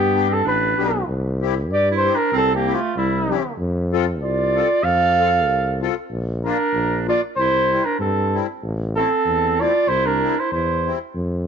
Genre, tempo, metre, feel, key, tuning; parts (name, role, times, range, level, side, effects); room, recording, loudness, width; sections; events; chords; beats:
alpine folk, alpine dance band; 95 BPM; 2/4; swing 54% on 8ths; A4 = 442 Hz
warm flugelhorn; melody; 0.0-11.0 s; E4 to F5; -20 LUFS; equal
bright clarinet; second line; 0.0-11.0 s; G3 to A4; -25 LUFS; right 12 dB
warm tuba; bass; 0.0-11.5 s; A1 to G2; -23 LUFS; left 1 dB; transformer saturation
accordion; accompaniment; 0.1-11.0 s; G3 to A4; -26 LUFS; left 14 dB; light tremolo tuning
light reverb, studio reverb; 1960s-style stereo with parts hard left and right, nothing above 7.8 kHz; -17 LUFS; side -7 dB against mid
0.0-6.1 A section; 6.1-11.5 B section
0.0 G; 1.1 C; 3.6 F; 6.1 Bb; 7.4 C; 8.6 Am; 9.9 C
0.44 | 1.07 1.70 | 2.33 2.96 | 3.58 4.21 | 4.84 5.47 | 6.10 6.73 | 7.37 8.00 | 8.62 9.25 | 9.88 10.51 | 11.14